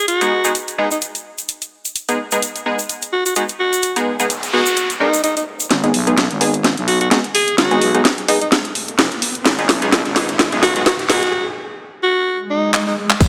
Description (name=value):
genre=bass house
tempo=128 BPM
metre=4/4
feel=swing 56% on 16ths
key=G# minor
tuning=A4 = 437 Hz
part: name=raspy alto saxophone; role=melody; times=0.0-12.9 s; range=D#4 to G#4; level=-20 LUFS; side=equal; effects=none
part: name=garage drum kit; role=drums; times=0.1-13.3 s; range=crash cymbal, handclaps, hi-hat, snare drum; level=-19 LUFS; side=equal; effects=none
part: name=tube shaker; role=percussion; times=0.1-5.7, 13.2-13.3 s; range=none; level=-27 LUFS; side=equal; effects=none
part: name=band-passed chord stab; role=stabs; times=0.2-11.2 s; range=G#3 to A#4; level=-23 LUFS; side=equal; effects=chorus, sidechain pumping, tape echo
part: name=noise sweep, riser, swell and impact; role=sound effects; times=4.1-13.3 s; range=none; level=-29 LUFS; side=equal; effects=none
part: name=growling FM bass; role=bass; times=5.7-13.3 s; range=F#1 to B1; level=-24 LUFS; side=equal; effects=tube saturation, sidechain pumping, high-pass filter
part: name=electronic hi-hat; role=drums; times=13.2-13.3 s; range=none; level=barely audible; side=none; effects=none
part: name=electronic kick drum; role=drums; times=13.2-13.3 s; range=none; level=-13 LUFS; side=equal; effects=none
room=moderate lush hall reverb, RT60 1.9 s, digital ambience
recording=none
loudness=-17 LUFS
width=mono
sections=0.0-5.7 A section; 5.7-13.2 B section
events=noise sweep 4.1-5.7; build-up 5.7-13.2; drum fill 5.7-11.3, 12.7-13.2; filter sweep on synth stab 5.7-13.2; riser 8.0-11.3; break 11.3-13.2; swell 12.4-13.2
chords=0.0 G#m